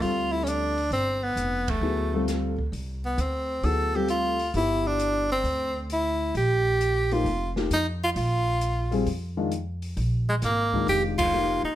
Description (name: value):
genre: modal jazz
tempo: 132 BPM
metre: 4/4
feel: swing 68% on 8ths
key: unclear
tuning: A4 = 440 Hz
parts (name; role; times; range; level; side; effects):
- clear tenor saxophone; melody; 0.0-11.8 s; Ab3 to A4; -25 LUFS; right 1 dB; plate reverb
- dark upright piano; accompaniment; 0.0-11.6 s; Eb3 to A4; -28 LUFS; left 4 dB; none
- upright bass; bass; 0.0-11.7 s; F1 to F2; -29 LUFS; equal; none
- open jazz drum kit; drums; 0.0-11.3 s; hi-hat, kick drum, ride cymbal, snare drum; -36 LUFS; right 2 dB; none
room: light reverb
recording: none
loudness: -23 LUFS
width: side -13 dB against mid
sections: 0.0-11.8 A section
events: band accent 1.6, 11.1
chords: 0.0 G13sus4; 6.4 Bb7sus4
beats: 0.01 0.47 | 0.92 1.37 1.82 2.28 | 2.73 3.18 3.64 4.09 | 4.54 4.99 5.45 5.90 | 6.35 6.80 7.26 7.71 | 8.16 8.62 9.07 9.52 | 9.97 10.43 10.88 11.33